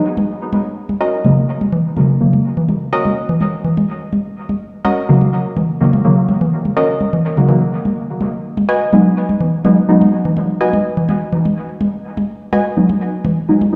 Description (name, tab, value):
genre	dub techno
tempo	125 BPM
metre	4/4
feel	straight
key	G# minor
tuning	A4 = 437 Hz
part	electronic toms and congas	percussion	0.2-13.7 s	none	-20 LUFS	equal	dub echo
part	filtered dub chord stab	riff	1.0-12.7 s	C#4 to G#5	-23 LUFS	equal	chorus, dub echo
part	deep mellow chord stab	stabs	1.2-13.8 s	C#3 to D#4	-17 LUFS	equal	chorus, phaser, dub echo
room	wet lush hall reverb, RT60 2.1 s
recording	played on a big sound system in a bare room, large studio reverb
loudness	-16 LUFS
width	mono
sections	0.0-13.8 A section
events	none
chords	0.0 D#m7; 7.7 G#m7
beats	| 0.05 0.53 1.01 1.49 | 1.97 2.45 2.93 3.41 | 3.89 4.37 4.85 5.33 | 5.81 6.29 6.77 7.25 | 7.73 8.21 8.69 9.17 | 9.65 10.13 10.61 11.09 | 11.57 12.05 12.53 13.01 | 13.49